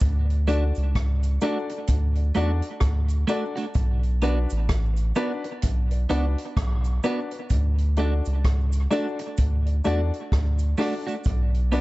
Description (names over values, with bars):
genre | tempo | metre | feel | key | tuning
dub reggae | 64 BPM | 4/4 | swing 60% on 16ths | unclear | A4 = 438 Hz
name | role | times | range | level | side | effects
warm sub bass | bass | 0.0-11.8 s | A1 to E2 | -22 LUFS | equal | none
vintage drum kit | drums | 0.0-11.8 s | hi-hat, kick drum, rim click | -27 LUFS | equal | none
cabasa | percussion | 0.0-11.8 s | none | -48 LUFS | right 8 dB | tape echo
clean electric guitar | accompaniment | 0.5-11.8 s | A3 to F#4 | -29 LUFS | right 4 dB | tape echo
dark upright piano | stabs | 0.5-11.8 s | D4 to D5 | -30 LUFS | left 4 dB | tape echo
room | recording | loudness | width
light reverb, studio ambience | dark, warm production, nothing above 7.9 kHz | -22 LUFS | side -19 dB against mid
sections
0.0-11.8 A section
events
none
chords
0.0 D; 3.8 Bm; 7.5 D; 11.2 Bm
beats
| 0.01 0.95 1.88 2.82 | 3.76 4.69 5.63 6.57 | 7.50 8.44 9.38 10.31 | 11.25